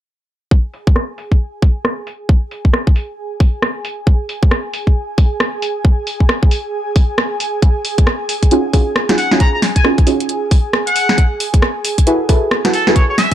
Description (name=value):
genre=UK garage, two-step garage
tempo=135 BPM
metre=4/4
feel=swing 61% on 16ths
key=unclear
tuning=A4 = 440 Hz
part: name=airy breathy pad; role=sustained chords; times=0.5-13.3 s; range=Ab4 to Ab5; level=-24 LUFS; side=right 2 dB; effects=chorus, sidechain pumping
part: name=electronic kick drum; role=drums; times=0.5-13.3 s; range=none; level=-11 LUFS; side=equal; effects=none
part: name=garage drum kit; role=drums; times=0.7-13.3 s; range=hi-hat, rim click, snare drum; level=-18 LUFS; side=equal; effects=low-pass filter on hats, low-pass filter on snare, low-pass filter on room
part: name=deep mellow chord stab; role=stabs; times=8.5-12.9 s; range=Db4 to Cb5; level=-16 LUFS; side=right 1 dB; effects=chorus, ping-pong delay
part: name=trumpet with straight mute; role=melody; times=9.2-13.3 s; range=A4 to Bb5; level=-17 LUFS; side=left 1 dB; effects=ping-pong delay
room=light reverb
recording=dark, warm production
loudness=-13 LUFS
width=side -12 dB against mid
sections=0.5-13.3 A section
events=filter sweep on drum 0.5-13.3; filter sweep on analog synth pad 0.5-13.3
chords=0.5 N.C.; 7.6 Ebm11; 11.2 Gbm11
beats=| 0.51 0.96 1.40 1.85 | 2.29 2.73 3.18 3.62 | 4.07 4.51 4.96 5.40 | 5.85 6.29 6.74 7.18 | 7.62 8.07 8.51 8.96 | 9.40 9.85 10.29 10.73 | 11.18 11.62 12.07 12.51 | 12.96